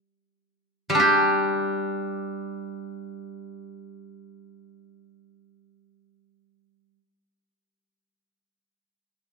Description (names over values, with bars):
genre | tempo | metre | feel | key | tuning
chinese traditional, Chinese solo plucked strings | free time | none | none | unclear | A4 = 441 Hz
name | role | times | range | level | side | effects
steel-string zither | solo | 0.9-7.0 s | G3 to G4 | -23 LUFS | equal | none
room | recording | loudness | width
moderate recital hall reverb, RT60 1.8 s | minimal, uncompressed stereo recording | -21 LUFS | side -3 dB against mid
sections
0.0-1.0 A section; 1.0-6.5 B section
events
slowing down 0.0-1.0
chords
none